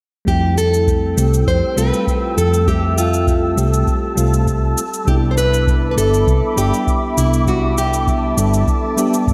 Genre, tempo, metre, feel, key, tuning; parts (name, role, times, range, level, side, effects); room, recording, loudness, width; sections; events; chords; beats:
sunset chillout; 100 BPM; 4/4; straight; F lydian; A4 = 438 Hz
mellow FM electric piano; accompaniment; 0.2-9.3 s; G3 to E5; -24 LUFS; equal; chorus, tape echo, slapback echo
nylon-string guitar; melody; 0.3-8.3 s; E4 to C5; -22 LUFS; equal; delay, slapback echo
ethereal airy pad; sustained chords; 1.1-9.3 s; A4 to E6; -26 LUFS; equal; ensemble chorus, built-in reverb
hollow-body short-scale fingered electric bass; bass; 0.3-9.3 s; G1 to F2; -20 LUFS; equal
cabasa; drums; 0.3-9.3 s; -30 LUFS; equal
electronic kick drum; drums; 0.3-9.3 s; -22 LUFS; equal
moderate lush hall reverb, RT60 1.7 s, digital ambience; big arena sound; -16 LUFS; mono
0.3-9.3 A section
0.3 Fmaj9; 4.8 Cmaj9
| 0.27 0.87 1.47 2.07 | 2.67 3.27 3.87 4.47 | 5.07 5.67 6.27 6.87 | 7.47 8.07 8.67 9.27